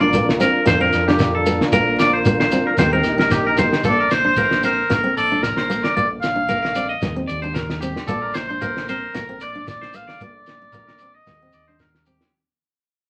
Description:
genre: highlife guitar band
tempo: 113 BPM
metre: 4/4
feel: swing 53% on 16ths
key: Bb major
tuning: A4 = 440 Hz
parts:
  - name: fingerpicked steel-string acoustic guitar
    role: accompaniment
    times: 0.0-12.3 s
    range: Bb3 to D4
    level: -26 LUFS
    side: equal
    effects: none
  - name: combo organ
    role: sustained chords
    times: 0.0-3.8 s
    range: D4 to Bb4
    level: -25 LUFS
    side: equal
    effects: none
  - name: twangy electric guitar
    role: arpeggios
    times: 0.0-12.3 s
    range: G4 to Eb5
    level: -24 LUFS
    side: equal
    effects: phaser
  - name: fingered electric bass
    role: bass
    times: 0.0-12.2 s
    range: Bb1 to F2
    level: -30 LUFS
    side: equal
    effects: none
  - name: cloth-damped thuddy drum kit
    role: drums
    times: 0.1-12.3 s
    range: kick drum, snare drum, toms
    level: -26 LUFS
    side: equal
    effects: none
  - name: shekere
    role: percussion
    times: 0.1-12.2 s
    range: none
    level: -30 LUFS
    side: equal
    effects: none
  - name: clear oboe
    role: melody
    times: 3.9-11.8 s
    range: A4 to F5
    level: -24 LUFS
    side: equal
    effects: none
room: wet club reverb, RT60 0.7 s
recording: vinyl crackle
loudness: -19 LUFS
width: mono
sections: 0.0-3.8 A section; 3.8-12.3 B section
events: drum fill 3.3-3.8; fade-out 3.8-12.3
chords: 0.0 Bb; 2.8 Eb; 3.8 Bb; 7.0 Eb; 8.1 Bb; 11.3 Eb

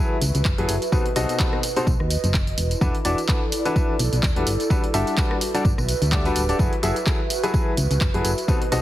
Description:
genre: piano house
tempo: 127 BPM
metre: 4/4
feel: swing 56% on 16ths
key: F# phrygian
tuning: A4 = 440 Hz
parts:
  - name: bright grand piano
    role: riff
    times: 0.0-8.8 s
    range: B2 to E5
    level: -25 LUFS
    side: left 2 dB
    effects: sidechain pumping, ping-pong delay
  - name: airy breathy pad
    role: texture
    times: 0.0-8.8 s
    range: E4 to E5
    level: -29 LUFS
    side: right 2 dB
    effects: chorus, sidechain pumping
  - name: solid FM bass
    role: bass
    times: 0.2-8.8 s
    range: D1 to D#2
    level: -23 LUFS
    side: equal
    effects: sidechain pumping
  - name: punchy analog drum machine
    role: drums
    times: 0.2-8.8 s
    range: handclaps, hi-hat, rim click, tambourine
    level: -28 LUFS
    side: equal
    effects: overdrive
  - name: electronic kick drum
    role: drums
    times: 0.5-8.6 s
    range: none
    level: -22 LUFS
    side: equal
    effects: overdrive
room: digital ambience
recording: heavily compressed radio sound, multiband compression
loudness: -19 LUFS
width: side -14 dB against mid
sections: 0.0-8.8 A section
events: none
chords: 0.0 F#m11; 0.9 B7b9; 2.6 E9sus4; 4.5 Gmaj9; 6.6 F#m11

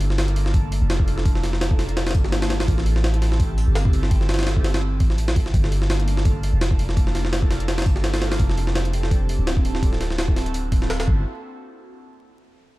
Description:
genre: drum and bass, jungle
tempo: 168 BPM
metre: 4/4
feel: swing 55% on 16ths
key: G dorian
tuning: A4 = 437 Hz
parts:
  - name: airy breathy pad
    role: sustained chords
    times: 0.0-11.2 s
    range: Bb3 to A4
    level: -31 LUFS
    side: right 1 dB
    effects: chorus, phaser, vintage 12-bit sampler grit
  - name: long sustained 808-style bass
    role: bass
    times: 0.0-11.2 s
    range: D1 to A1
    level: -22 LUFS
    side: equal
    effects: none
  - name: jungle sampler-style drum kit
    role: drums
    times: 0.0-11.2 s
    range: hi-hat, kick drum, snare drum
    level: -21 LUFS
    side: equal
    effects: overdrive, small room ambience
room: little or no reverb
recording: dark, warm production, vinyl crackle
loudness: -18 LUFS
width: side -18 dB against mid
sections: 0.0-11.3 A section; 11.3-12.7 B section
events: drop 0.0-11.3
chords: 0.0 Gm7; 2.7 Am7; 5.5 Gm7; 8.4 F6; 9.8 D9; 11.1 Gm7; 11.3 N.C.

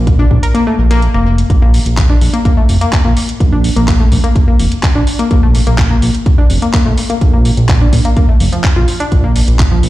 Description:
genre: progressive house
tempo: 126 BPM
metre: 4/4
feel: straight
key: Bb major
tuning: A4 = 440 Hz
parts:
  - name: fat analog bass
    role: bass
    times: 0.0-9.9 s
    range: F1 to Bb1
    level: -12 LUFS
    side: equal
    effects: sidechain pumping
  - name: electronic kick drum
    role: drums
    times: 0.1-9.7 s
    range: none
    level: -11 LUFS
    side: equal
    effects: none
  - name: pop drum kit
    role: drums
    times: 0.1-9.9 s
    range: handclaps, hi-hat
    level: -21 LUFS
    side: equal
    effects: none
  - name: analog pluck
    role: arpeggios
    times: 0.2-9.8 s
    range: F3 to Bb4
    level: -16 LUFS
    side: left 2 dB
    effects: chorus, sidechain pumping, digital delay
room: little or no reverb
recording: played on a big sound system in a bare room, large studio reverb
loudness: -9 LUFS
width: side -16 dB against mid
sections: 0.0-9.9 A section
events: kick drops out 0.5-1.5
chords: 0.0 Bb5

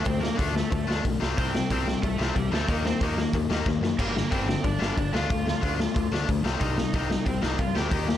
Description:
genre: punk rock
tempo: 183 BPM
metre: 4/4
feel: straight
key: unclear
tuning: A4 = 436 Hz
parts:
  - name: lead guitar through a small cranked amp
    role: melody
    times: 0.0-8.2 s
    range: G3 to G5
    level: -32 LUFS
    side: right 3 dB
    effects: overdrive, ping-pong delay
  - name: biting overdriven guitar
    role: riff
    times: 0.0-8.2 s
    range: G2 to Eb4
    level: -28 LUFS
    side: left 7 dB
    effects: none
  - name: modern bright picked electric bass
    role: bass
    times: 0.1-8.1 s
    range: G1 to F#2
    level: -31 LUFS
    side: equal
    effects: none
  - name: raw garage drum kit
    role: drums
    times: 0.1-8.2 s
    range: crash cymbal, hi-hat, kick drum, snare drum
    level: -28 LUFS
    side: equal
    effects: none
room: little or no reverb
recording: none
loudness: -23 LUFS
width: side -11 dB against mid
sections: 0.0-8.2 A section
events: drum fill 3.7-4.0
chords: 0.0 D5; 1.2 C5; 2.7 Eb5; 4.0 Gm; 5.1 Dm; 6.4 Cm

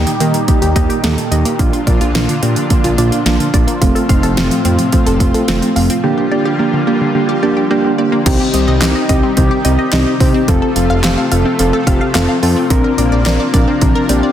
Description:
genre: synth-pop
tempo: 108 BPM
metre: 4/4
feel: straight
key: unclear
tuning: A4 = 440 Hz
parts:
  - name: soft electric-piano-like synth keys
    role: accompaniment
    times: 0.0-14.3 s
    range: A3 to Bb4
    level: -15 LUFS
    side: right 1 dB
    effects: chorus
  - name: warm analog pad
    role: sustained chords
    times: 0.0-14.3 s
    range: A2 to A4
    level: -20 LUFS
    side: left 1 dB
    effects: chorus
  - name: wide unison pluck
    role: arpeggios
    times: 0.0-14.3 s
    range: D3 to F5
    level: -21 LUFS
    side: left 2 dB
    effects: digital delay
  - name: fat analog bass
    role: bass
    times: 0.0-14.2 s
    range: F1 to Eb3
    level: -16 LUFS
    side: equal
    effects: none
  - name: pop drum kit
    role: drums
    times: 0.1-14.2 s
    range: crash cymbal, handclaps, hi-hat, kick drum, snare drum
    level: -16 LUFS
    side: equal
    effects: none
room: moderate digital room reverb, RT60 1.2 s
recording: dense, heavily limited modern master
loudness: -11 LUFS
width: side -10 dB against mid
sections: 0.0-8.3 A section; 8.3-14.3 B section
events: none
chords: 0.0 Eb; 1.6 Bb; 3.8 F; 6.0 Bb6; 8.3 Cm; 10.5 F; 12.7 Bbadd9

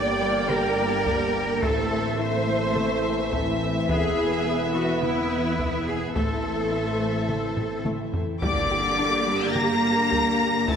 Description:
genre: cinematic, hybrid orchestral and electronic film score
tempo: 106 BPM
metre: 4/4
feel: straight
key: unclear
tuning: A4 = 440 Hz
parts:
  - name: warm symphonic violin section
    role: melody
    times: 0.0-10.8 s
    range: E5 to Bb6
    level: -30 LUFS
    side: left 4 dB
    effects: none
  - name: clear symphonic violin section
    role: second line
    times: 0.0-10.8 s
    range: B4 to Bb5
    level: -31 LUFS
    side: left 1 dB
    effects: none
  - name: clear symphonic viola section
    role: accompaniment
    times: 0.0-10.8 s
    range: A3 to G4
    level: -31 LUFS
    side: right 1 dB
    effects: none
  - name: ethereal airy pad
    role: sustained chords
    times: 0.0-10.8 s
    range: D3 to B4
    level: -33 LUFS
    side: left 1 dB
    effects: ensemble chorus, built-in reverb
  - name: mellow French horn section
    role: sustained chords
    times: 0.0-10.8 s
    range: D3 to G4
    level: -32 LUFS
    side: left 4 dB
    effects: none
  - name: warm trombone section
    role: sustained chords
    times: 0.0-10.8 s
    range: D3 to C4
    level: -32 LUFS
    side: right 4 dB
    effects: none
  - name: string-like resonator pluck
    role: arpeggios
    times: 0.0-10.8 s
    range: E3 to A4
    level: -35 LUFS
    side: left 3 dB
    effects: none
  - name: bright symphonic cello section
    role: bass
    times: 0.0-10.8 s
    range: D3 to D5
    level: -28 LUFS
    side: right 2 dB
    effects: none
  - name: rich symphonic double bass section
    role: bass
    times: 0.0-10.8 s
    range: E1 to G2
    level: -34 LUFS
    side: right 3 dB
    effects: none
  - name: solo taiko drums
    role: drums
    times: 0.5-10.8 s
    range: none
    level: -32 LUFS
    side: equal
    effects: none
  - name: impact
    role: sound effects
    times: 8.4-10.7 s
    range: none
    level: -35 LUFS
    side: left 1 dB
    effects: none
room: wet scoring stage reverb, RT60 1.8 s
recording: none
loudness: -22 LUFS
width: side -7 dB against mid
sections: 0.0-8.4 A section; 8.4-10.8 B section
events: drum fill 7.6-8.4; impact 8.4-10.7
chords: 0.0 Gm; 1.6 Am; 3.9 E; 6.2 Am; 8.4 Gm

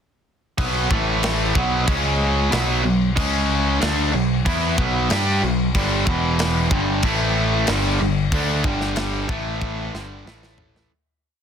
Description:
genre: hard rock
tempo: 93 BPM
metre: 4/4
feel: straight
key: B minor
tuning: A4 = 441 Hz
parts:
  - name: overdriven electric guitar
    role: riff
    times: 0.6-10.9 s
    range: E2 to G4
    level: -20 LUFS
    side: equal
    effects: none
  - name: growling picked electric bass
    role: bass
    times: 0.6-10.9 s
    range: E1 to G2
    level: -24 LUFS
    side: equal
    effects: overdrive
  - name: tight metal drum kit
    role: drums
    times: 0.6-10.9 s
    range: crash cymbal, kick drum, snare drum, toms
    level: -24 LUFS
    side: left 1 dB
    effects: none
room: small room ambience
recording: dense, heavily limited modern master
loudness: -18 LUFS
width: side -8 dB against mid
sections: 0.6-10.9 riff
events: fade-out 8.3-10.9; drum fill 9.6-10.9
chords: 0.6 B5; 0.9 A5; 1.6 B5; 1.9 C#5; 2.5 B5; 3.2 C#5; 3.8 Bm; 5.7 G5; 6.1 E5; 6.7 G5; 7.0 A5; 7.7 G5; 9.3 A5; 9.9 G5; 10.3 A5

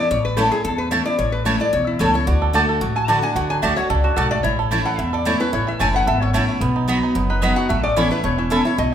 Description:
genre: bluegrass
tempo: 221 BPM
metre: 4/4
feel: straight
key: A major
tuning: A4 = 445 Hz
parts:
  - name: lap resonator guitar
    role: melody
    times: 0.0-8.9 s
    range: E4 to B5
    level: -22 LUFS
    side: left 2 dB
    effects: none
  - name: picked steel-string acoustic guitar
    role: accompaniment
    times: 0.0-8.9 s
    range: E2 to F#4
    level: -22 LUFS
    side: left 1 dB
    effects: none
  - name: upright bass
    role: bass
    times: 0.1-8.9 s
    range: E1 to E2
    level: -23 LUFS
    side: equal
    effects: none
  - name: mandolin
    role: stabs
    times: 0.4-8.6 s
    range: A3 to B5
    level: -24 LUFS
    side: right 3 dB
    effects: none
  - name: bluegrass banjo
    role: melody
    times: 2.3-8.9 s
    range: E3 to A4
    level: -25 LUFS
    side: right 6 dB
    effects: none
room: wet large studio reverb, RT60 1.3 s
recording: minimal, uncompressed stereo recording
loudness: -17 LUFS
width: side -9 dB against mid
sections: 0.0-6.6 A section; 6.6-8.9 B section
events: none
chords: 0.0 A; 2.3 D; 4.4 A; 6.6 B; 7.7 Aadd9

